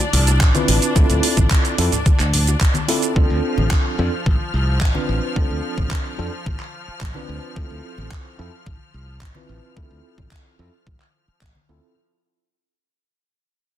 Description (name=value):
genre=nu-disco, nu disco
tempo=109 BPM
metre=4/4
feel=straight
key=D dorian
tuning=A4 = 440 Hz
part: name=clear symphonic string section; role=sustained chords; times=0.0-12.0 s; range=F3 to F6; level=-29 LUFS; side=left 1 dB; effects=sidechain pumping
part: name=pop drum kit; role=drums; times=0.0-11.5 s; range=handclaps, hi-hat, shaker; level=-23 LUFS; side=right 2 dB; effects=overdrive
part: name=bongos and congas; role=percussion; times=0.0-11.7 s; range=none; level=-27 LUFS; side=left 3 dB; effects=none
part: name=modern bright fingered electric bass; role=bass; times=0.1-11.8 s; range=A1 to F2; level=-21 LUFS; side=equal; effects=none
part: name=electronic kick drum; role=drums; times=0.4-11.5 s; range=none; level=-18 LUFS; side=equal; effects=none
part: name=tine electric piano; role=accompaniment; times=0.5-11.9 s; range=C4 to B4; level=-25 LUFS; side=right 1 dB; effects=overdrive, fast stereo tremolo, low-pass filter, digital delay
room=little or no reverb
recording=dense, heavily limited modern master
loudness=-16 LUFS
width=side -12 dB against mid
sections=0.0-12.0 A section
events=fade-out 0.0-12.0; filter sweep on tine electric piano 0.0-12.0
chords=0.0 Dm7; 3.2 F6/A; 7.6 Dm7 (rootless)